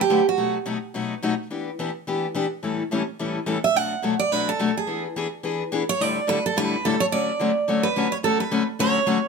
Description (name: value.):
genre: jazz.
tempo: 214 BPM.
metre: 4/4.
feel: swing 57% on 8ths.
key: D major.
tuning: A4 = 440 Hz.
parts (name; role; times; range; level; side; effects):
picked steel-string acoustic guitar; melody; 0.0-0.5, 3.6-9.3 s; F#4 to F#5; -22 LUFS; right 6 dB; none.
picked steel-string acoustic guitar; accompaniment; 0.1-9.2 s; A2 to B4; -24 LUFS; left 5 dB; none.
room: moderate studio reverb, RT60 0.5 s.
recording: none.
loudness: -21 LUFS.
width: side -5 dB against mid.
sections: 0.0-8.2 A section; 8.2-9.3 B section.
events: none.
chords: 0.4 B7; 1.5 Em7; 2.6 A7; 3.7 Bm7; 4.9 E7; 6.0 A7sus4; 7.1 Dmaj7.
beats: 0.10 | 0.38 0.66 0.94 1.22 | 1.50 1.78 2.06 2.35 | 2.63 2.91 3.19 3.47 | 3.75 4.03 4.31 4.59 | 4.87 5.15 5.43 5.71 | 5.99 6.27 6.55 6.83 | 7.12 7.39 7.67 7.96 | 8.23 8.52 8.79 9.07.